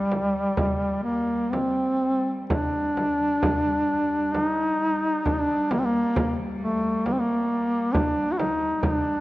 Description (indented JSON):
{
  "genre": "caucasian folk, Caucasian lament",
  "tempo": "60-69 BPM",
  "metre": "3/4",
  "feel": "rubato",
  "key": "G minor",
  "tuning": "A4 = 443 Hz",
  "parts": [
    { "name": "mellow duduk", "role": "melody", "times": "0.0-9.2 s", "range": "G3 to F#4", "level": "-23 LUFS", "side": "equal", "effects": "none" },
    { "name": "clear symphonic cello section", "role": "drone", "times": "0.0-9.2 s", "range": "G3", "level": "-35 LUFS", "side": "equal", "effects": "none" },
    { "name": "frame drum", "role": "percussion", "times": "0.1-9.0 s", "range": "none", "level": "-29 LUFS", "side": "right 1 dB", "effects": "none" }
  ],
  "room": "moderate church reverb, RT60 3.1 s",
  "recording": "worn, warbling old tape, cassette tape, warbly pitch drift",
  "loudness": "-22 LUFS",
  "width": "side -17 dB against mid",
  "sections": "0.0-2.5 A section; 2.5-9.2 A section",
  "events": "none",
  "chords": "none",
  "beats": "0.57 1.53 | 2.50 3.43 4.34 | 5.25 6.16 7.05 | 7.94 8.82"
}